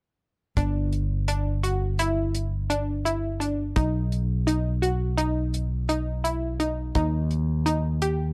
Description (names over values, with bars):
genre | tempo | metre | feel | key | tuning
progressive instrumental, band music in an uneven meter | 169 BPM (eighths) | 9/8 | straight | unclear | A4 = 440 Hz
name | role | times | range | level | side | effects
analog pluck | arpeggios | 0.6-8.3 s | D4 to G4 | -30 LUFS | equal | chorus
fretless electric bass | bass | 0.6-8.3 s | G1 to Eb2 | -28 LUFS | equal | none
damped 70s drum kit | drums | 0.6-8.2 s | hi-hat, kick drum | -31 LUFS | equal | none
room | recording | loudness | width
light reverb | dry, close 1970s-style studio recording | -26 LUFS | mono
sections
0.6-8.3 A section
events
none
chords
0.6 G5; 3.8 B; 7.0 Eb